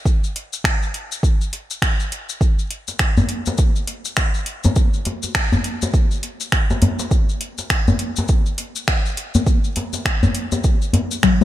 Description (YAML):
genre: downtempo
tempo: 102 BPM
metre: 4/4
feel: swing 59% on 16ths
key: none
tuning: none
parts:
  - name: afro-pop drum kit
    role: drums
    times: 0.1-11.4 s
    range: finger snaps, hi-hat, shaker, toms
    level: -23 LUFS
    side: left 2 dB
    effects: overdrive
  - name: electronic kick drum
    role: drums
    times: 0.1-11.4 s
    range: none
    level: -18 LUFS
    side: equal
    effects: overdrive
  - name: djembe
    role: percussion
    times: 2.9-11.4 s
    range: none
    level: -20 LUFS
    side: left 1 dB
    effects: none
room: light reverb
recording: none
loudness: -17 LUFS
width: side -13 dB against mid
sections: 0.0-11.4 A section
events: drum fill 11.2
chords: none